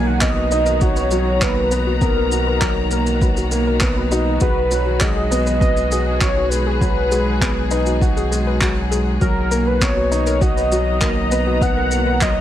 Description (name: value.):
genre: piano and strings electronica.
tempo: 100 BPM.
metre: 4/4.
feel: straight.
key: G# minor.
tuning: A4 = 442 Hz.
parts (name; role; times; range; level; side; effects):
warm velvety synth lead; melody; 0.0-12.4 s; A#4 to F#5; -22 LUFS; equal; chorus.
clear symphonic string section; sustained chords; 0.0-12.4 s; D#3 to A#5; -27 LUFS; left 2 dB; none.
felt-muted upright piano; riff; 0.0-12.4 s; F#3 to F#4; -22 LUFS; equal; none.
round analog bass; bass; 0.0-12.4 s; B1; -22 LUFS; equal; sidechain pumping.
soft round pluck; arpeggios; 0.2-12.3 s; F#4 to B4; -28 LUFS; left 5 dB; chorus, sidechain pumping, digital delay.
electronic kick drum; drums; 0.2-12.3 s; none; -20 LUFS; equal; overdrive.
shaker and handclaps; drums; 0.2-12.3 s; none; -25 LUFS; equal; none.
room: light reverb, studio reverb.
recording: none.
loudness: -15 LUFS.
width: side -11 dB against mid.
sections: 0.0-12.4 A section.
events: none.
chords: 0.0 G#m7/B.